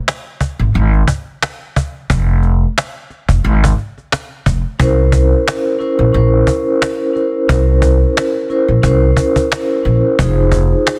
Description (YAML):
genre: hip hop, boom-bap hip-hop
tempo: 89 BPM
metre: 4/4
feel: swing 54% on 16ths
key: unclear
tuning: A4 = 439 Hz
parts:
  - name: cajon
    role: drums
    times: 0.1-11.0 s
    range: none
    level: -19 LUFS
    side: equal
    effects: vintage 12-bit sampler grit
  - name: upright bass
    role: bass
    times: 0.6-10.7 s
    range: F1 to C2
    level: -15 LUFS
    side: equal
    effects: none
  - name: vibraphone with soft mallets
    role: accompaniment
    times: 4.8-11.0 s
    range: Db4 to C5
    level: -17 LUFS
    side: equal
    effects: cassette tape, high-pass filter, low-pass filter
room: studio reverb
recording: dense, heavily limited modern master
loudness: -14 LUFS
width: mono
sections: 0.0-4.8 A section; 4.8-11.0 B section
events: break 0.0-4.8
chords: 0.0 Fm; 4.8 C7b9; 10.2 Fm7